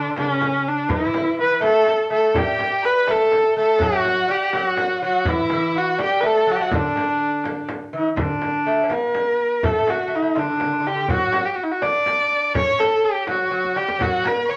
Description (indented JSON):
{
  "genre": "Persian modal ensemble",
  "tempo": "82 BPM (dotted quarters)",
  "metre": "6/8",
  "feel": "straight",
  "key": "D dastgah mahur, D dastgah chahargah from 8.2 s",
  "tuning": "A4 = 440 Hz",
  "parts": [
    { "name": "rich kamancheh", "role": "melody", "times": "0.0-14.6 s", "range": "C#4 to D5", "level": "-21 LUFS", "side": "equal", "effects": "none" },
    { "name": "lute", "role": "second line", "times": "0.0-14.6 s", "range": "C#3 to D4", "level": "-28 LUFS", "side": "equal", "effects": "none" },
    { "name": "frame drum", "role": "percussion", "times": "0.2-14.4 s", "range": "none", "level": "-31 LUFS", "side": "equal", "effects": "none" },
    { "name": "tombak", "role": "percussion", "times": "0.2-14.6 s", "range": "none", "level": "-33 LUFS", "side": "equal", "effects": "none" },
    { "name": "dark studio violin section", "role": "second line", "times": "2.4-7.7, 14.0-14.6 s", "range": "D5 to C#6", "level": "-33 LUFS", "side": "equal", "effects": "none" }
  ],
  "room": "wet studio reverb, RT60 0.6 s",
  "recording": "none",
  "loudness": "-20 LUFS",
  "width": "mono",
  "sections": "0.0-8.2 A section; 8.2-14.6 B section",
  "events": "drum fill 13.5-14.0",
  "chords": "none"
}